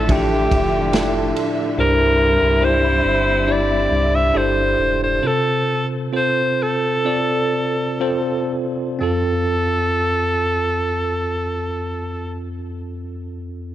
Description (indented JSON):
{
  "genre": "pop ballad",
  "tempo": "60-71 BPM",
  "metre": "4/4",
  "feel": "straight",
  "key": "F major",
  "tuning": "A4 = 440 Hz",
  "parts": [
    { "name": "bright alto saxophone", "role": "melody", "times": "0.0-12.4 s", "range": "G4 to E5", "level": "-19 LUFS", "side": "equal", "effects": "none" },
    { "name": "bell-like tine electric piano", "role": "accompaniment", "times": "0.0-13.7 s", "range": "F2 to D5", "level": "-22 LUFS", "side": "equal", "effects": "medium stereo tremolo" },
    { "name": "muted studio string section", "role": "sustained chords", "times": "0.0-5.2 s", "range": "D3 to E5", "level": "-25 LUFS", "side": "left 2 dB", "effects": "none" },
    { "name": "direct-recorded clean electric guitar", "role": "arpeggios", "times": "0.0-2.3 s", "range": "D3 to A4", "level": "-27 LUFS", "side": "right 5 dB", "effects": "none" },
    { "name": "warm sub bass", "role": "bass", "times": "0.0-5.2 s", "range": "E1 to C2", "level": "-22 LUFS", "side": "equal", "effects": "none" },
    { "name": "natural country drum kit", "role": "drums", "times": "0.1-1.6 s", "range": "kick drum, ride cymbal, snare drum", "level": "-23 LUFS", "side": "equal", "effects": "none" }
  ],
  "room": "light reverb, small room ambience",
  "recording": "worn, warbling old tape, cassette tape, warbly pitch drift",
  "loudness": "-16 LUFS",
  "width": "side -12 dB against mid",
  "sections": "0.0-9.0 A section; 9.0-13.0 B section",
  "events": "slowing down 1.8-9.0",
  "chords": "0.0 Dmadd9; 1.8 Cadd9; 5.2 F"
}